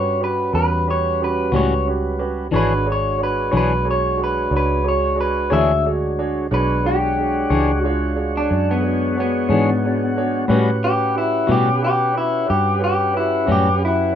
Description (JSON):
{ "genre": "blues", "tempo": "60 BPM (dotted quarters)", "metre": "12/8", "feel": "straight", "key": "E mixolydian", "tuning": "A4 = 440 Hz", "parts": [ { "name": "electric guitar through a small old amp", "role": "melody", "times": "0.0-14.2 s", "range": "B3 to E5", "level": "-20 LUFS", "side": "left 2 dB", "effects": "none" }, { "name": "clear upright piano", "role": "accompaniment", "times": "0.0-14.2 s", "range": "C#4 to C#5", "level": "-26 LUFS", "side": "right 6 dB", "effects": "none" }, { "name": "tonewheel organ", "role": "sustained chords", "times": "0.0-14.2 s", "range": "G3 to F#5", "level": "-24 LUFS", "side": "right 2 dB", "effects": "slow rotary speaker" }, { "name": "vintage muted fingered electric bass", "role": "bass", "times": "0.0-14.2 s", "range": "G#1 to B2", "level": "-23 LUFS", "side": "equal", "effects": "none" }, { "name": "clean electric guitar", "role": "accompaniment", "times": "1.5-13.7 s", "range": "A2 to C#5", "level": "-19 LUFS", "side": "left 5 dB", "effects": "harmonic tremolo" } ], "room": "light reverb", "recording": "rough home demo mix", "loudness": "-16 LUFS", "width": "side -9 dB against mid", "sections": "0.0-14.2 A section", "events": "clean electric guitar solo 0.0-14.2", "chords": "0.0 A13 (rootless); 2.5 E13; 10.5 A13" }